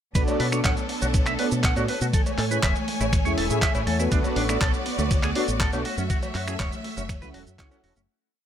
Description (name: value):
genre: nu-disco, nu disco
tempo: 121 BPM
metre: 4/4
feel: straight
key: F# minor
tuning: A4 = 442 Hz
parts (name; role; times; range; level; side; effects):
- mellow synth brass; accompaniment; 0.1-7.9 s; A3 to F#5; -30 LUFS; equal; chorus, sidechain pumping, ping-pong delay
- rich studio string section; sustained chords; 0.1-8.1 s; A3 to G#5; -31 LUFS; left 1 dB; sidechain pumping
- fingered electric bass with an envelope filter; bass; 0.1-8.1 s; E1 to B2; -28 LUFS; equal; none
- soft round pluck; arpeggios; 0.2-8.0 s; E3 to F#4; -34 LUFS; right 3 dB; ensemble chorus, sidechain pumping, ping-pong delay
- clean electric guitar; riff; 0.2-8.0 s; A3 to F#5; -31 LUFS; right 3 dB; wide subtle chorus, ping-pong delay
- dusty soul sampler-style drum kit; drums; 0.2-8.1 s; cabasa, finger snaps, handclaps, hi-hat, ride cymbal; -30 LUFS; right 1 dB; none
- electronic kick drum; drums; 0.2-7.7 s; none; -24 LUFS; equal; none
- cowbell; percussion; 0.3-7.8 s; none; -36 LUFS; left 2 dB; none
room: light reverb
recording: none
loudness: -21 LUFS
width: side -9 dB against mid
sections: 0.2-8.1 drop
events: drop 0.2-8.1; fade-out 5.4-8.1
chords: 0.2 Bm7; 2.1 Amaj7; 4.1 D6; 5.9 F#m7